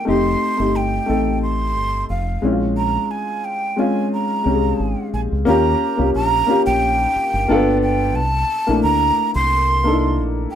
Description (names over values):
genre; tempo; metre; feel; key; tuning
R&B, neo-soul; 89 BPM; 4/4; swing 54% on 16ths; Bb dorian; A4 = 441 Hz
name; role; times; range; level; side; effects
breathy jazz flute; melody; 0.0-10.6 s; F5 to C6; -20 LUFS; right 2 dB; none
warm upright piano; accompaniment; 0.0-10.6 s; Ab3 to A4; -19 LUFS; left 2 dB; none
deep dub fingered electric bass; bass; 0.1-10.5 s; F1 to Eb2; -22 LUFS; equal; none
room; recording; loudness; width
moderate studio ambience, RT60 0.5 s; band playing live in one room; -16 LUFS; side -9 dB against mid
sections
0.0-5.5 A section; 5.5-10.6 B section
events
none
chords
0.1 F9; 2.4 Bbm9; 5.5 Eb9; 7.5 G7; 8.1 C13